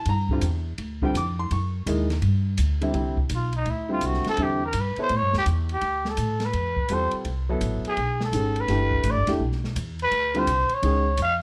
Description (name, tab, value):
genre	jazz, small-group swing and bop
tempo	167 BPM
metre	4/4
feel	swing 65% on 8ths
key	C major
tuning	A4 = 435 Hz
part	clear upright piano	accompaniment	0.0-11.1 s	D3 to D6	-30 LUFS	equal	none
part	upright bass	bass	0.1-11.4 s	E1 to A2	-28 LUFS	equal	none
part	open jazz drum kit	drums	0.1-11.3 s	hi-hat, kick drum, ride cymbal, snare drum	-36 LUFS	equal	none
part	growling trumpet	melody	3.3-11.4 s	Eb4 to F5	-27 LUFS	equal	plate reverb
room	light reverb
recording	none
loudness	-25 LUFS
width	mono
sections	0.0-2.9 A section; 2.9-11.4 A section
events	trumpet solo 2.9-11.4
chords	0.1 Gm7; 1.5 Gb13; 2.2 G5; 2.9 Cmaj7; 4.4 Em7; 5.1 A5; 5.8 Dm9; 7.3 F#m7b5; 8.0 B7; 8.7 Em7; 10.1 Dm7; 10.8 Db